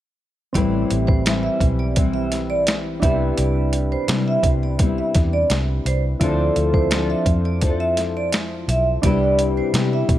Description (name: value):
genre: indie pop, bedroom pop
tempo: 85 BPM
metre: 4/4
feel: straight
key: C major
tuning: A4 = 438 Hz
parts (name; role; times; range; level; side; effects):
- vibraphone with medium mallets; second line; 0.5-10.1 s; C5 to E5; -24 LUFS; right 2 dB; analog chorus, tape echo
- soft electric-piano-like synth keys; accompaniment; 0.5-10.2 s; C4 to C5; -27 LUFS; right 2 dB; chorus
- vintage muted fingered electric bass; bass; 0.5-10.2 s; A1 to C3; -22 LUFS; equal; none
- nylon-string guitar; accompaniment; 0.6-10.2 s; A2 to A4; -24 LUFS; left 4 dB; lush chorus, vibrato effect
- boom bap sampler-style drum kit; drums; 0.6-10.2 s; hi-hat, kick drum, snare drum; -21 LUFS; equal; overdrive
room: light reverb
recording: none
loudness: -17 LUFS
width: side -13 dB against mid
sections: 0.6-10.2 A section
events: none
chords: 0.6 Am7; 3.0 Cmaj7; 6.2 Dm7; 9.0 Cmaj7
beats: | 0.55 1.26 1.97 2.67 | 3.38 4.09 4.79 5.50 | 6.21 6.91 7.62 8.33 | 9.04 9.74